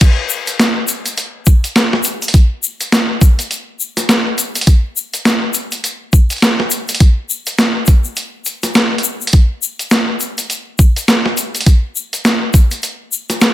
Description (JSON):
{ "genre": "glitch hop", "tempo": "103 BPM", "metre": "4/4", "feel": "swing 59% on 16ths", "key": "none", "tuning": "none", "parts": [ { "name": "boom bap sampler-style drum kit", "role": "drums", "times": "0.0-13.5 s", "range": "crash cymbal, hi-hat, snare drum", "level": "-14 LUFS", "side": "equal", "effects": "none" }, { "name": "electronic kick drum", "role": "drums", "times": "0.0-12.7 s", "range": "none", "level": "-8 LUFS", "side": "equal", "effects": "overdrive" }, { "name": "egg shaker", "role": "percussion", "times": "0.0-13.5 s", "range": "none", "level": "-20 LUFS", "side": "left 7 dB", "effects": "none" } ], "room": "little or no reverb", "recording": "none", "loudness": "-12 LUFS", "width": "side -14 dB against mid", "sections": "0.0-13.5 A section", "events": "none", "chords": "none" }